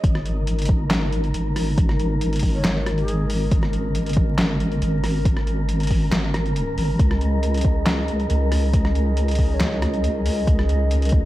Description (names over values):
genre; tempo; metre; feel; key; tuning
deep dubstep; 138 BPM; 4/4; half-time; unclear; A4 = 439 Hz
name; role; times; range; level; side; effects
dark analog pad; sustained chords; 0.0-11.3 s; G#3 to D#5; -28 LUFS; right 1 dB; wide subtle chorus
deep soft wobble bass; bass; 0.0-11.3 s; G#1 to C#2; -21 LUFS; equal; chorus
electronic kick drum; drums; 0.0-11.2 s; none; -19 LUFS; equal; overdrive
trip hop sampler-style drum kit; drums; 0.0-11.2 s; handclaps, hi-hat, rim click, snare drum; -27 LUFS; equal; overdrive
wind-like tuned noise texture; texture; 0.0-11.3 s; A#4; -31 LUFS; left 3 dB; built-in reverb
breathy bright long shakuhachi; melody; 2.5-3.3, 9.5-9.8 s; G#4 to D#5; -36 LUFS; equal; dub echo
room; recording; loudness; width
digital ambience; dark, warm production, vinyl crackle; -18 LUFS; side -15 dB against mid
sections
0.0-11.3 A section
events
drop 0.0-11.3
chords
0.0 G#5; 7.0 C#5